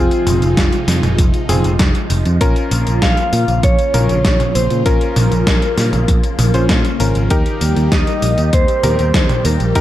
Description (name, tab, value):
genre	synthwave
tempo	98 BPM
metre	4/4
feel	straight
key	unclear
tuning	A4 = 439 Hz
part	soft octave-layered synth lead	melody	0.0-9.7 s	F4 to F5	-21 LUFS	equal	chorus, tape echo
part	soft synth bell	second line	0.0-9.7 s	F4 to F5	-27 LUFS	equal	chorus, phaser, tape echo
part	phased analog pad	sustained chords	0.0-9.8 s	C3 to G4	-23 LUFS	equal	phaser, chorus, vintage 12-bit sampler grit, sidechain pumping
part	warm electric grand piano	stabs	0.0-9.8 s	C4 to C5	-22 LUFS	left 2 dB	tape echo
part	picked electric bass	bass	0.0-9.8 s	F1 to Bb2	-16 LUFS	equal	tube saturation, sidechain pumping
part	gated 80s digital drum machine	drums	0.1-9.8 s	hi-hat, snare drum, tambourine, toms	-19 LUFS	equal	gated reverb, gated reverb snare, overdrive
part	electronic kick drum	drums	0.6-9.8 s	none	-16 LUFS	equal	none
room	light reverb, digital ambience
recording	dark, warm production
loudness	-12 LUFS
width	side -13 dB against mid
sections	0.0-9.8 A section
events	none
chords	0.0 Fm; 2.4 Bbm; 7.3 Eb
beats	0.57 1.19 1.80 | 2.41 3.02 3.63 4.25 | 4.86 5.47 6.08 6.70 | 7.31 7.92 8.53 9.14 | 9.76